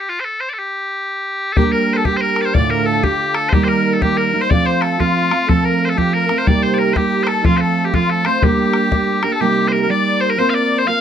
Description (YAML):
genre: celtic folk, Celtic polka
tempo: 122 BPM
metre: 2/4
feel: swing 64% on 8ths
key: G minor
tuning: A4 = 438 Hz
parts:
  - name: loud bright bagpipes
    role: melody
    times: 0.0-11.0 s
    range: F4 to F5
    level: -19 LUFS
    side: left 1 dB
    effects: none
  - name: musette accordion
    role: second line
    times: 1.6-11.0 s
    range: Eb4 to F5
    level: -21 LUFS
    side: left 4 dB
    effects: none
  - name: fingerpicked steel-string acoustic guitar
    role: accompaniment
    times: 1.6-11.0 s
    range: D2 to Bb4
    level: -17 LUFS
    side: right 4 dB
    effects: none
  - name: bodhran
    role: percussion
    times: 1.6-9.3 s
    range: none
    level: -18 LUFS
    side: left 3 dB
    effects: none
room: moderate studio ambience, RT60 0.5 s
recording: none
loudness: -14 LUFS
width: side -9 dB against mid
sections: 0.0-1.6 A section; 1.6-9.4 A section; 9.4-11.0 B section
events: none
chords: 0.0 N.C.; 1.6 Gm; 2.5 Dm; 3.5 Eb; 4.5 F; 6.5 Cm7; 7.4 F; 8.4 Gm; 9.4 Cm7; 10.4 Bbsus2